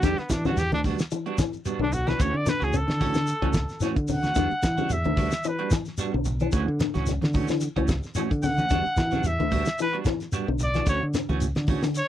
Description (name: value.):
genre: afrobeat.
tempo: 111 BPM.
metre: 4/4.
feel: swing 54% on 16ths.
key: E dorian.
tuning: A4 = 440 Hz.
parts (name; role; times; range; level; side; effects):
warm trumpet; melody; 0.0-12.1 s; B3 to F#5; -27 LUFS; equal; none.
electric guitar with an envelope filter; arpeggios; 0.0-12.0 s; C#3 to E3; -30 LUFS; left 7 dB; analog chorus.
semi-hollow electric guitar; stabs; 0.0-12.0 s; E3 to F#4; -31 LUFS; right 7 dB; harmonic tremolo.
fingered electric bass; bass; 0.0-12.0 s; B1 to E3; -27 LUFS; equal; none.
damped 70s drum kit; drums; 0.0-12.1 s; hi-hat, kick drum, snare drum; -28 LUFS; equal; none.
congas; percussion; 0.0-12.1 s; none; -32 LUFS; right 1 dB; none.
shekere; percussion; 0.0-12.1 s; none; -33 LUFS; left 1 dB; none.
room: little or no reverb.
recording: dry, close 1970s-style studio recording, lossy compression artefacts.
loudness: -23 LUFS.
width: side -12 dB against mid.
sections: 0.0-12.1 A section.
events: trumpet solo 0.0-12.1.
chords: 0.0 Em9; 2.2 Dmaj9; 4.4 Em9; 6.5 Dmaj9; 8.7 Em9; 10.9 Dmaj9.